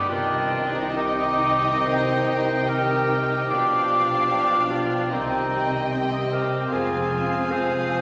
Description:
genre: classical, slow romantic movement for symphony orchestra.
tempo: 64-76 BPM.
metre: 4/4.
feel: rubato.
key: C minor.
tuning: A4 = 439 Hz.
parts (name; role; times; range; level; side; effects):
rich studio violin section; second line; 0.0-8.0 s; Eb5 to F5; -34 LUFS; equal; none.
warm clarinet; second line; 0.0-8.0 s; Eb4 to C5; -26 LUFS; equal; none.
warm cor anglais; second line; 0.0-8.0 s; C4 to Ab4; -34 LUFS; equal; none.
clear studio viola section; accompaniment; 0.0-8.0 s; C4 to Eb4; -34 LUFS; equal; none.
concert harp; arpeggios; 0.0-8.0 s; F2 to Eb6; -36 LUFS; equal; none.
warm studio cello section; bass; 0.0-8.0 s; F2 to C3; -34 LUFS; equal; none.
rich studio violin section; melody; 0.1-8.0 s; G5 to Ab5; -37 LUFS; equal; none.
hollow concert flute; second line; 0.1-8.0 s; G5 to Ab5; -34 LUFS; equal; none.
mellow bassoon; accompaniment; 0.1-8.0 s; Eb3 to F3; -34 LUFS; equal; none.
dark French horn section; sustained chords; 0.1-8.0 s; Eb3 to D4; -37 LUFS; equal; none.
rich studio double bass section; bass; 0.1-8.0 s; F1 to C2; -39 LUFS; equal; none.
room: wet concert hall reverb, RT60 1.8 s.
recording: none.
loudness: -23 LUFS.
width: mono.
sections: 0.1-8.0 A section.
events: none.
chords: 0.1 Cm; 3.5 G7/B; 5.1 Cm; 6.7 Fm.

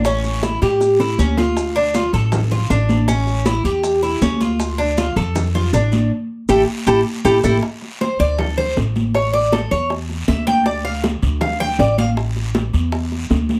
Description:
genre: latin, Cuban son and guajira.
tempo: 158 BPM.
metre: 4/4.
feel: straight.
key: D minor.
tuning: A4 = 440 Hz.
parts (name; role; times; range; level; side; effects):
Cuban tres; arpeggios; 0.0-12.1 s; C#4 to G5; -21 LUFS; equal; none.
upright bass; bass; 0.0-13.6 s; A1 to A2; -22 LUFS; equal; none.
bongos; percussion; 0.0-13.6 s; none; -27 LUFS; equal; none.
maracas; percussion; 0.0-7.5 s; none; -38 LUFS; equal; none.
congas; percussion; 0.1-13.6 s; none; -25 LUFS; equal; none.
guiro; percussion; 0.1-13.6 s; none; -37 LUFS; equal; none.
room: light reverb.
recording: none.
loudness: -18 LUFS.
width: mono.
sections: 0.0-7.6 A section; 7.6-13.6 B section.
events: drum fill 0.4-1.6; band accent 6.1-7.6; Cuban tres solo 7.6-13.6.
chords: 0.0 A7; 1.6 Dm; 3.1 A7; 4.6 Dm; 6.1 A5; 7.6 D5; 9.1 A5; 10.7 D5; 12.2 A5.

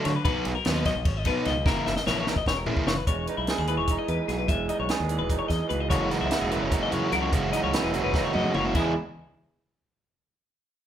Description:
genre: math rock and midwest emo.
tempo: 296 BPM (eighths).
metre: 7/8.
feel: straight.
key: E lydian.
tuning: A4 = 440 Hz.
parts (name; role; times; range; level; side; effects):
twelve-string electric guitar; arpeggios; 0.0-8.9 s; E4 to E5; -30 LUFS; left 7 dB; none.
overdriven semi-hollow guitar; riff; 0.0-2.9, 5.9-8.9 s; F#2 to G#4; -28 LUFS; right 1 dB; none.
compact cocktail drum kit; drums; 0.0-8.8 s; crash cymbal, hi-hat, kick drum, ride cymbal, snare drum, toms; -28 LUFS; equal; none.
growling fingered electric bass; bass; 0.1-8.9 s; E1 to D3; -31 LUFS; equal; overdrive.
electric guitar through a small old amp; accompaniment; 3.1-8.9 s; E2 to G#4; -30 LUFS; right 6 dB; none.
room: moderate large studio reverb, RT60 0.8 s.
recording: band playing live in one room.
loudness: -23 LUFS.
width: side -10 dB against mid.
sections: 0.0-3.1 A section; 3.1-8.8 B section; 8.8-10.2 C section.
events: drum fill 1.7-3.1, 8.1-8.8.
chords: 0.3 B6; 1.7 F#9; 3.1 Emaj7; 5.9 F#13; 8.8 Emaj7.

